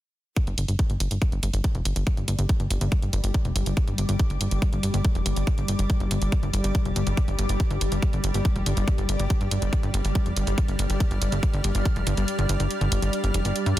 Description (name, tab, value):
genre	psychedelic trance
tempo	141 BPM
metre	4/4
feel	straight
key	unclear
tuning	A4 = 439 Hz
part	electronic hi-hat	drums	0.4-13.8 s	none	-32 LUFS	right 1 dB	studio reverb
part	electronic kick drum	drums	0.4-11.9 s	none	-23 LUFS	equal	studio reverb
part	granular cloud pad	texture	1.6-13.8 s	G3 to F6	-30 LUFS	left 1 dB	built-in reverb, sidechain pumping
part	plucky analog bass	bass	0.5-13.8 s	F1 to G2	-24 LUFS	equal	tube saturation
room	little or no reverb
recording	dense, heavily limited modern master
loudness	-22 LUFS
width	side -14 dB against mid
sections	0.4-13.8 A section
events	kick drops out 12.3-13.8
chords	0.4 G5